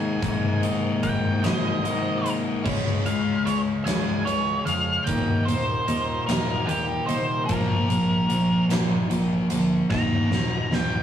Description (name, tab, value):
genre	quiet-loud alternative rock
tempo	50 BPM (dotted quarters)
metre	6/8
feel	straight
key	Eb major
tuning	A4 = 445 Hz
part	octave-fuzz lead guitar	melody	0.0-11.0 s	G4 to Bb5	-28 LUFS	equal	distortion, analog delay
part	twelve-string electric guitar	arpeggios	0.0-7.5 s	Eb2 to Ab4	-32 LUFS	right 4 dB	none
part	thick fuzz guitar	riff	0.0-11.0 s	Eb2 to Eb4	-25 LUFS	left 1 dB	distortion
part	growling picked electric bass	bass	0.0-11.0 s	Eb1 to F2	-33 LUFS	equal	overdrive
part	huge arena drum kit	drums	0.2-10.9 s	crash cymbal, hi-hat, kick drum, snare drum	-27 LUFS	equal	none
part	tight distorted guitar	riff	7.5-11.0 s	Eb2 to Bb3	-34 LUFS	right 2 dB	none
room	moderate booth ambience, RT60 0.2 s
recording	rough rehearsal-room recording, studio reverb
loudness	-21 LUFS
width	side -9 dB against mid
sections	0.0-2.7 A section; 2.7-11.0 B section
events	lead electric guitar solo 2.7-11.0; drum fill 9.9-11.0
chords	0.0 Abadd9/C; 2.7 Db; 5.1 Eb; 7.5 Bb; 9.9 Eb5